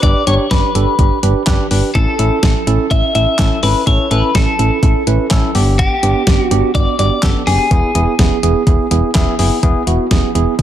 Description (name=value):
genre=synth-pop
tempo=125 BPM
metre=4/4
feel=straight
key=unclear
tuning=A4 = 438 Hz
part: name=twelve-string electric guitar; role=melody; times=0.0-9.1 s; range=G4 to E5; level=-18 LUFS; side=left 2 dB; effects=spring reverb, ping-pong delay
part: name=mellow tine electric piano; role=accompaniment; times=0.0-10.6 s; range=B3 to G#5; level=-18 LUFS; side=moving between left 1 dB and right 9 dB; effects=auto-pan
part: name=solid FM bass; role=bass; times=0.0-10.6 s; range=E1 to A1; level=-16 LUFS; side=equal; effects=none
part: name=clean 12-bit digital drum machine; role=drums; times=0.0-10.6 s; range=handclaps, hi-hat, kick drum, snare drum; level=-15 LUFS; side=equal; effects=none
room=light reverb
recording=dense, heavily limited modern master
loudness=-11 LUFS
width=side -11 dB against mid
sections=0.0-9.6 A section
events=tine electric piano fill 8.9-9.6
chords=0.0 G; 2.0 A; 5.6 G; 7.7 E